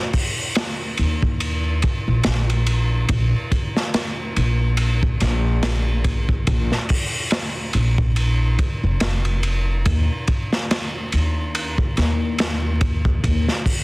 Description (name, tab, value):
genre	trip hop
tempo	71 BPM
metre	4/4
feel	swing 57% on 16ths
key	unclear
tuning	A4 = 439 Hz
part	crunchy breakbeat drum kit	drums	0.1-13.8 s	hi-hat, kick drum, ride cymbal, snare drum	-21 LUFS	equal	none
part	upright bass	bass	1.0-13.5 s	F1 to Eb2	-19 LUFS	equal	none
room	little or no reverb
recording	dense, heavily limited modern master, vinyl crackle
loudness	-18 LUFS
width	side -24 dB against mid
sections	0.0-13.8 A section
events	none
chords	none